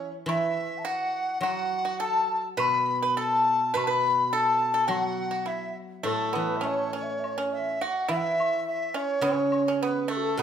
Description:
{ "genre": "chinese traditional, Chinese chamber ensemble", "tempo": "104 BPM", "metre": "2/4", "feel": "rubato", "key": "A gong mode", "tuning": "A4 = 443 Hz", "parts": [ { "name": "mellow large dizi", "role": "melody", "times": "0.0-10.4 s", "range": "A4 to B5", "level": "-28 LUFS", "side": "left 1 dB", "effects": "none" }, { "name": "breathy bright low xiao", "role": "second line", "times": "0.0-10.4 s", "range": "F#4 to B5", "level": "-30 LUFS", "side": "left 3 dB", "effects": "none" }, { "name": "pipa", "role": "second line", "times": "0.0-10.4 s", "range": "A3 to B4", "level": "-31 LUFS", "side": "right 4 dB", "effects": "none" }, { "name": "guzheng", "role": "accompaniment", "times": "0.0-10.4 s", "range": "A2 to A3", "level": "-33 LUFS", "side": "right 2 dB", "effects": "none" }, { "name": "woodblock", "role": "percussion", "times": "0.3-10.2 s", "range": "none", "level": "-38 LUFS", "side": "left 4 dB", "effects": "none" } ], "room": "wet recital hall reverb, RT60 1.4 s", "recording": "recorded in a church or concert hall", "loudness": "-24 LUFS", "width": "side -8 dB against mid", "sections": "0.0-7.2 A section; 7.2-10.4 B section", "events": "none", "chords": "none" }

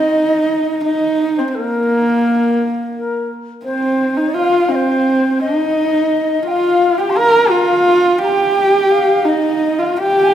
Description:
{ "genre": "mongolian traditional, Mongolian folk", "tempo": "86 BPM", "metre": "4/4", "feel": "straight", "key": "unclear", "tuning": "A4 = 444 Hz", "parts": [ { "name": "warm horsehead fiddle", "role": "melody", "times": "0.0-10.3 s", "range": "Bb3 to Bb4", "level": "-14 LUFS", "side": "right 1 dB", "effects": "none" }, { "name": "bright reedy xiao", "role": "second line", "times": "0.0-10.3 s", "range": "Bb4 to C6", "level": "-19 LUFS", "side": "left 4 dB", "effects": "none" } ], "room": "wet recital hall reverb, RT60 1.5 s", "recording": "none", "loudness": "-13 LUFS", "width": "side -10 dB against mid", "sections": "0.0-10.3 A section", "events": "none", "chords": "none" }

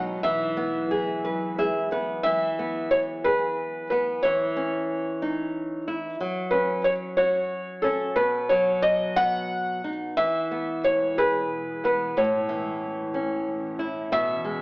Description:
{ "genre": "children's music, lullaby", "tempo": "60 BPM (dotted quarters)", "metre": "6/8", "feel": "straight", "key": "E major", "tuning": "A4 = 435 Hz", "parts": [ { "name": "flamenco guitar", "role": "accompaniment", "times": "0.0-14.6 s", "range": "A2 to E5", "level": "-28 LUFS", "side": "equal", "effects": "none" }, { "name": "ethereal airy pad", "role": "sustained chords", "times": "0.0-2.2, 10.8-14.6 s", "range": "E2 to E4", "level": "-40 LUFS", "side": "equal", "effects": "ensemble chorus, built-in reverb, phaser" }, { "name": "felt-muted upright piano", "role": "melody", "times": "0.2-14.6 s", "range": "A4 to F#5", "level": "-24 LUFS", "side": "equal", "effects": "none" } ], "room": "moderate recital hall reverb, RT60 1.4 s", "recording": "AM radio sound", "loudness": "-23 LUFS", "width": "side -26 dB against mid", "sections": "0.0-2.2 A section; 2.2-14.6 B section", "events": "nylon-string guitar fill 1.2-2.2", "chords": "0.2 Eadd9; 2.2 E; 4.2 C#madd9/E; 6.2 F#5; 8.2 B; 10.2 E; 12.2 A" }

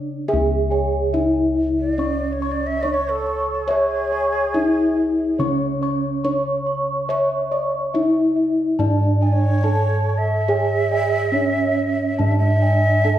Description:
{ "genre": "Javanese gamelan", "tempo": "70 BPM", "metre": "4/4", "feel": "straight", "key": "C# pelog", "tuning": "A4 = 441 Hz", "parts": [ { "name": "gamelan-type bronze metallophone", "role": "melody", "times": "0.0-13.2 s", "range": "C#4 to C#5", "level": "-21 LUFS", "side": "equal", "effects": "none" }, { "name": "gamelan-type bossed gongs", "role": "bass", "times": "0.0-13.2 s", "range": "C#2 to C#5", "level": "-22 LUFS", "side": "equal", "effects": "none" }, { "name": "gamelan-type bossed gongs", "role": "arpeggios", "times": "0.3-13.2 s", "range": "C#5 to C#6", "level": "-29 LUFS", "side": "left 4 dB", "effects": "none" }, { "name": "gamelan-type bronze metallophone", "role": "arpeggios", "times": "0.3-13.2 s", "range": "C#5 to C#6", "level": "-29 LUFS", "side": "right 2 dB", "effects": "none" }, { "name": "breathy bright xiao", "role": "second line", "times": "1.8-13.2 s", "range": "G#4-32c to E5-30c", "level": "-24 LUFS", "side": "right 1 dB", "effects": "none" } ], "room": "wet recital hall reverb, RT60 1.3 s", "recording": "heard from further back in the room", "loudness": "-17 LUFS", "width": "side -12 dB against mid", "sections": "0.3-13.2 A section", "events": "none", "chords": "none" }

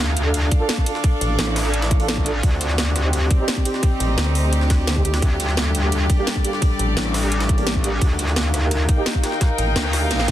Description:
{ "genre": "dark technical drum and bass", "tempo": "172 BPM", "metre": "4/4", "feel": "straight", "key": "D phrygian", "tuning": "A4 = 440 Hz", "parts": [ { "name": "dark analog pad", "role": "sustained chords", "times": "0.0-10.3 s", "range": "G3 to F5", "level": "-28 LUFS", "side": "left 2 dB", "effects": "chorus, sidechain pumping" }, { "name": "metallic wobble bass", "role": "bass", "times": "0.0-10.3 s", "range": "A1 to D2", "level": "-21 LUFS", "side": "equal", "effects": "chorus, sidechain pumping" }, { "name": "rich chamber string section", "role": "texture", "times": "0.0-10.3 s", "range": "C4 to G5", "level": "-27 LUFS", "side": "right 1 dB", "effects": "sidechain pumping" }, { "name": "drum and bass drum kit", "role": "drums", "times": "0.2-10.3 s", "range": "hi-hat, rim click, snare drum", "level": "-24 LUFS", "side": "equal", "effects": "none" }, { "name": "jungle sampler-style drum kit", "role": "drums", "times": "0.2-10.3 s", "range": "ride cymbal, snare drum", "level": "-32 LUFS", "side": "right 1 dB", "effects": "overdrive, high-pass filter on cymbals, high-pass filter on snare" }, { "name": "dark brass ensemble", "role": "stabs", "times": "0.3-10.1 s", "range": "Bb3 to A4", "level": "-29 LUFS", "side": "right 3 dB", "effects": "tape echo" }, { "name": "electronic kick drum", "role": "drums", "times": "0.5-10.3 s", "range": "none", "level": "-18 LUFS", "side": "equal", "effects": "none" }, { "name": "vowel-sweep wobble bass", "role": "bass", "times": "1.2-1.4, 4.0-7.0, 9.6-9.7 s", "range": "A1 to D2", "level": "-20 LUFS", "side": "equal", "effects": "chorus" } ], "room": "light reverb, digital ambience", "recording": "dense, heavily limited modern master", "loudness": "-17 LUFS", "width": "side -12 dB against mid", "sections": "0.0-10.3 A section", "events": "drum fill 10.1", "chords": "0.0 Dm; 2.4 Cm/D; 5.2 Gm/D; 8.0 Eb/D" }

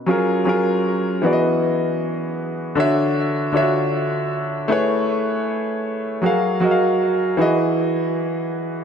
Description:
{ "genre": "R&B", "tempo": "78 BPM", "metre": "4/4", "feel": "straight", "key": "unclear", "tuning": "A4 = 440 Hz", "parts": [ { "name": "warm concert grand piano", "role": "solo", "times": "0.0-8.8 s", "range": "B2 to E#5", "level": "-18 LUFS", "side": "equal", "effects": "diffuse ambient delay" } ], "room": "wet plate reverb, RT60 3.8 s", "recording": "dreamy mix soaked in reverb", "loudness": "-18 LUFS", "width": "side -7 dB against mid", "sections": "0.1-8.8 A section", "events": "none", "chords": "0.1 F#maj9; 1.2 Emaj9; 2.8 Dmaj9; 4.7 Amaj9; 6.2 F#maj9; 7.4 Emaj9" }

